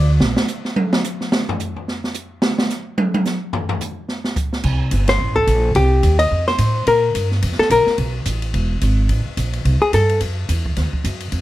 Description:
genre	jazz, small-group swing and bop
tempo	216 BPM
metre	4/4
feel	swing 59% on 8ths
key	unclear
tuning	A4 = 440 Hz
part	hollow-body jazz guitar	melody	0.0-0.1, 5.1-10.2 s	G4 to Eb5	-16 LUFS	left 2 dB	plate reverb
part	upright bass	bass	0.0-0.3, 4.6-11.4 s	E1 to Bb2	-17 LUFS	right 1 dB	none
part	open jazz drum kit	drums	0.2-11.4 s	crash cymbal, hi-hat, kick drum, ride cymbal, snare drum, toms	-22 LUFS	right 1 dB	none
room	light reverb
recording	none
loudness	-16 LUFS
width	side -15 dB against mid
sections	0.0-4.6 A section; 4.6-11.4 B section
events	drum solo 0.2-4.6; band accent 5.1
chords	0.2 N.C.; 4.6 Gmadd9; 5.8 Cm; 6.3 F; 6.9 Bb5; 8.0 Asus2; 8.5 E; 9.1 Am7; 10.2 Ebm

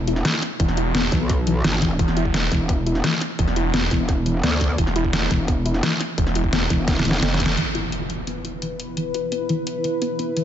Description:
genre	dark technical drum and bass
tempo	172 BPM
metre	4/4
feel	straight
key	unclear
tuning	A4 = 440 Hz
part	metallic wobble bass	bass	0.0-7.2 s	E1 to D2	-22 LUFS	equal	chorus
part	soft round pluck	arpeggios	0.1-10.4 s	E3 to E4	-26 LUFS	left 1 dB	analog chorus, sidechain pumping, ping-pong delay
part	dubstep drum kit	drums	0.1-10.4 s	hi-hat, snare drum	-24 LUFS	equal	none
part	phased detuned saw bass	bass	0.6-7.6 s	E1 to F1	-22 LUFS	equal	phaser, overdrive, sidechain pumping
part	electronic kick drum	drums	0.6-7.5 s	none	-22 LUFS	equal	none
part	dark analog pad	sustained chords	8.3-10.4 s	B3 to B4	-26 LUFS	left 2 dB	chorus, vintage 12-bit sampler grit, sidechain pumping
part	impact	sound effects	7.6-9.0 s	none	-34 LUFS	equal	none
room	moderate church reverb, RT60 2.9 s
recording	dreamy mix soaked in reverb, nothing above 7.8 kHz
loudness	-19 LUFS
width	side -10 dB against mid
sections	0.0-7.6 A section; 7.6-10.4 B section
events	drum fill 6.9-7.6; band accent 7.5; impact 7.6-9.0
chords	0.0 E5

